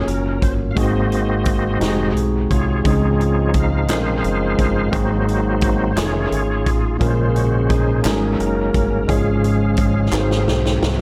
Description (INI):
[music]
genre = slow gospel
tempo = 58 BPM (dotted quarters)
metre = 6/8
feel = straight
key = Db major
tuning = A4 = 440 Hz
[part]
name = tine electric piano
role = accompaniment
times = 0.0-11.0 s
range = Ab2 to Db5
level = -23 LUFS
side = equal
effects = dub echo
[part]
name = bright tonewheel organ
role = sustained chords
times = 0.0-11.0 s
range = Db3 to F5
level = -25 LUFS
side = equal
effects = fast rotary speaker, overdrive, chorus vibrato
[part]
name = deep dub fingered electric bass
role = bass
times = 0.0-11.0 s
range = F1 to Db2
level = -24 LUFS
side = equal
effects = none
[part]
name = swinging big-band drum kit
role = drums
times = 0.1-11.0 s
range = hi-hat, kick drum, snare drum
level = -25 LUFS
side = equal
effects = dub echo
[part]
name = group handclap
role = percussion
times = 3.9-10.4 s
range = none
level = -30 LUFS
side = equal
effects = none
[sound]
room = studio reverb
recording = echo-heavy mix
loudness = -18 LUFS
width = mono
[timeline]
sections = 0.0-11.0 A section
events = tonewheel organ solo 0.0-11.0; drum fill 10.1-11.0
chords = 0.0 Gbmaj7; 0.8 Ab7; 2.8 Dbmaj7; 4.9 Ab7; 6.0 F7alt; 7.0 Bbm7; 8.0 Ab9sus4; 9.1 Db/Ab; 10.1 Ab7